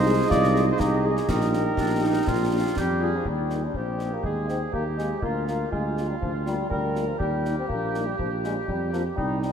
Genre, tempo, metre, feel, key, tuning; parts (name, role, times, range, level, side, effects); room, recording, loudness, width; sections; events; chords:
military-style march for wind band; 122 BPM; 2/4; straight; Eb major; A4 = 437 Hz
mellow cornet; melody; 0.0-9.5 s; G4 to Eb5; -32 LUFS; right 3 dB
clear euphonium; second line; 0.0-9.5 s; F3 to G4; -29 LUFS; left 3 dB
warm woodwind section; second line; 0.0-9.5 s; D4 to Eb5; -29 LUFS; right 4 dB
mellow trombone section; sustained chords; 0.0-3.0 s; F3 to Eb4; -32 LUFS; right 3 dB
dark tuba; bass; 0.0-9.5 s; Bb1 to F2; -27 LUFS; equal
mellow French horn section; accompaniment; 0.1-9.5 s; G3 to Ab4; -36 LUFS; left 5 dB
concert snare drum, concert bass drum and clash cymbals; drums; 0.3-9.5 s; -33 LUFS; equal
wet cathedral reverb, RT60 5.5 s; in a vast, echoing space; -22 LUFS; side -8 dB against mid
0.0-3.3 A section; 3.3-9.5 B section
0.0 Ab/C; 1.3 Eb/Bb; 2.3 Bb; 3.3 Eb; 4.2 Ab/Eb; 5.2 Bb7/D; 7.2 Eb; 8.2 Bb